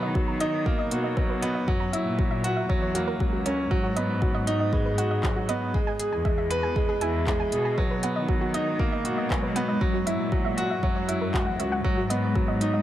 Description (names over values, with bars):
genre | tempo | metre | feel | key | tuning
piano and strings electronica | 118 BPM | 4/4 | straight | unclear | A4 = 439 Hz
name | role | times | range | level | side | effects
soft round pluck | arpeggios | 0.0-12.8 s | F#4 to B5 | -33 LUFS | right 2 dB | chorus, sidechain pumping, digital delay
clear concert grand piano | riff | 0.0-12.8 s | F#3 to B4 | -27 LUFS | right 1 dB | digital delay
rich symphonic cello section | bass | 0.0-12.8 s | C#2 to D#3 | -30 LUFS | left 1 dB | sidechain pumping
electronic kick drum | drums | 0.2-12.5 s | none | -27 LUFS | equal | none
organic electronic drum kit | drums | 0.4-12.7 s | handclaps, hi-hat | -34 LUFS | left 1 dB | overdrive
granular cloud pad | sustained chords | 8.6-12.8 s | G#3 | -33 LUFS | left 1 dB | built-in reverb, sidechain pumping
room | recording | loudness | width
light reverb, digital ambience | none | -23 LUFS | side -12 dB against mid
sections
0.0-12.8 A section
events
none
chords
0.0 Bmaj7; 1.7 F#7; 3.7 G#m7; 5.7 E; 7.8 Bmaj7; 9.8 F#7; 11.8 G#m7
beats
0.15 0.66 1.17 | 1.68 2.18 2.69 3.20 | 3.71 4.22 4.73 5.24 | 5.74 6.25 6.76 7.27 | 7.78 8.29 8.79 9.30 | 9.81 10.32 10.83 11.34 | 11.85 12.35